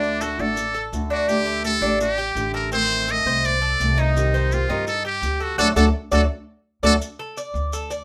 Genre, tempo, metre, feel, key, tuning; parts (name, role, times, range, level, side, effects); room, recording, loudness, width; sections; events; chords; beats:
latin, Cuban son and guajira; 168 BPM; 4/4; straight; A4 = 439 Hz
trumpet with metal mute; melody; 0.0-6.9 s; D4 to Eb5; -25 LUFS; equal
nylon-string guitar; accompaniment; 0.0-7.0 s; C3 to G4; -28 LUFS; equal
Cuban tres; arpeggios; 0.0-8.0 s; C4 to D5; -28 LUFS; equal
upright bass; bass; 0.0-8.0 s; A1 to G2; -27 LUFS; equal
maracas; percussion; 0.0-8.0 s; -40 LUFS; equal
moderate studio reverb, RT60 0.6 s; -21 LUFS; mono
0.0-7.0 A section; 7.0-8.0 B section
band accent 5.6-7.0
0.0 D; 1.3 Dsus4; 2.7 Adim; 4.2 Cm; 5.6 D; 7.0 Bbmaj7 (rootless)
0.21 0.57 0.93 | 1.29 1.65 2.00 2.36 | 2.72 3.08 3.44 3.80 | 4.16 4.51 4.87 5.23 | 5.59 5.95 6.31 6.67 | 7.02 7.38 7.74